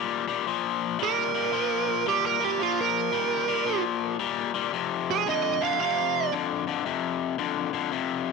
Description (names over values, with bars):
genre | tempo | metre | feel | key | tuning
blues | 113 BPM | 4/4 | swing 65% on 8ths | Bb major | A4 = 440 Hz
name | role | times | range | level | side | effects
overdriven electric guitar | riff | 0.0-8.3 s | F2 to G3 | -27 LUFS | left 11 dB | none
smooth overdriven lead guitar | melody | 1.0-6.3 s | F4 to F5 | -26 LUFS | right 12 dB | tape echo
room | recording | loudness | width
light reverb, digital ambience | 1960s-style stereo with parts hard left and right | -24 LUFS | side -4 dB against mid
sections
0.0-8.3 A section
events
none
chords
0.0 Bb5; 4.7 F5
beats
| 0.47 1.00 1.53 2.06 | 2.60 3.13 3.66 4.19 | 4.72 5.26 5.79 6.32 | 6.85 7.39 7.92